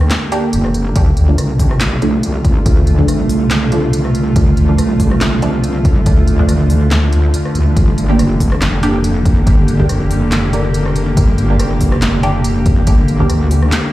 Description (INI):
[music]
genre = deep dubstep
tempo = 141 BPM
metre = 4/4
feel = swing 54% on 16ths, half-time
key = D minor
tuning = A4 = 439 Hz
[part]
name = bowed-like drone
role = sustained chords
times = 0.0-13.9 s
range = D3 to G4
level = -19 LUFS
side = right 1 dB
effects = built-in reverb
[part]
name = wobble bass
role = bass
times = 0.0-13.7 s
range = F1 to D2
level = -14 LUFS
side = equal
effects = chorus
[part]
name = deep house drum kit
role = drums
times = 0.0-13.8 s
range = handclaps, hi-hat, rim click, snare drum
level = -21 LUFS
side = equal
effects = none
[part]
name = filtered dub chord stab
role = stabs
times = 0.3-13.4 s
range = F3 to G4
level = -21 LUFS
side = right 2 dB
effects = phaser, lush chorus, dub echo
[part]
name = electronic kick drum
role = drums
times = 1.0-13.3 s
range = none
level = -14 LUFS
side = equal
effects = none
[sound]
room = digital ambience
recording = played on a big sound system in a bare room, stone room reverb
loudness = -11 LUFS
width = side -16 dB against mid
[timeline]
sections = 0.0-13.9 A section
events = none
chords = 0.0 Gm; 1.0 Dm; 7.8 Gm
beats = 0.11 0.53 | 0.96 1.38 1.81 2.23 | 2.66 3.08 3.51 3.94 | 4.36 4.79 5.21 5.64 | 6.06 6.49 6.91 7.34 | 7.76 8.19 8.62 9.04 | 9.47 9.89 10.32 10.74 | 11.17 11.60 12.02 12.45 | 12.87 13.30 13.72